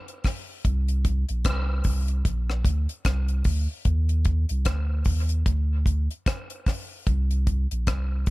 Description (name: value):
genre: dub reggae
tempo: 75 BPM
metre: 4/4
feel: swing 59% on 16ths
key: C minor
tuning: A4 = 445 Hz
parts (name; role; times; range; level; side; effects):
- deep reggae drum kit; drums; 0.1-8.3 s; hi-hat, kick drum, rim click; -26 LUFS; equal; none
- warm sub bass; bass; 0.7-8.3 s; Bb1 to Eb2; -23 LUFS; equal; none
room: little or no reverb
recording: none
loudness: -23 LUFS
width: side -20 dB against mid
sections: 0.0-8.3 A section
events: none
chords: none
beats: | 0.64 1.45 2.25 3.05 | 3.85 4.66 5.46 6.26 | 7.07 7.87